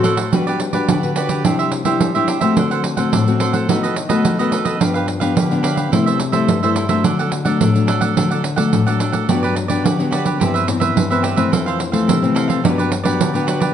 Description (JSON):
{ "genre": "samba and choro", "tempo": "107 BPM", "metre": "4/4", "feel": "straight", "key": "G major", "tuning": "A4 = 439 Hz", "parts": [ { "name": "cavaquinho", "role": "accompaniment", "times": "0.0-13.7 s", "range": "D4 to F#5", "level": "-21 LUFS", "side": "right 6 dB", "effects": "none" }, { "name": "nylon-string guitar", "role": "accompaniment", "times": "0.0-13.7 s", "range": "F2 to B4", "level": "-18 LUFS", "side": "left 4 dB", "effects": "none" }, { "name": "pandeiro", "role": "percussion", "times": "0.0-13.7 s", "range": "none", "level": "-19 LUFS", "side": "right 4 dB", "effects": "none" } ], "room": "wet large studio reverb, RT60 1.1 s", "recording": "dark, warm production, nothing above 11.0 kHz", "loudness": "-15 LUFS", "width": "side -9 dB against mid", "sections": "0.3-13.7 A section", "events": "none", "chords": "0.3 Gmaj7; 1.4 Cadd9; 2.6 D7; 3.7 B7/D#; 4.8 G7; 5.9 C6; 7.0 D; 9.3 Gmaj7; 10.4 Cmaj7/G; 11.5 Fmaj7; 12.6 Gmaj7" }